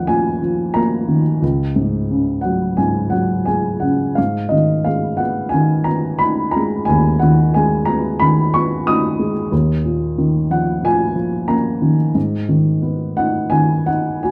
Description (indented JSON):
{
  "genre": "classical, lyrical solo piano",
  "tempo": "89 BPM",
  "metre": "4/4",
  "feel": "rubato",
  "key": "G# dorian",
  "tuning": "A4 = 440 Hz",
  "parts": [
    { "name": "dark upright piano", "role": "solo", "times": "0.0-14.3 s", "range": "C#2 to D#6", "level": "-17 LUFS", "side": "equal", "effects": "none" }
  ],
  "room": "moderate studio reverb, RT60 0.6 s",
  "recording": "none",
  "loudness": "-17 LUFS",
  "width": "mono",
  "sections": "0.0-14.3 A section",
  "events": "none",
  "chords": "0.0 D#sus2; 1.4 C#sus4; 4.2 G#m; 9.5 D#sus2; 12.2 G#m7",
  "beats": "0.09 0.76 | 1.42 2.10 2.78 3.47 | 4.17 4.86 5.54 6.22 | 6.89 7.56 8.21 8.87 | 9.52 10.18 10.84 11.49 | 12.16 12.83 13.52 14.24"
}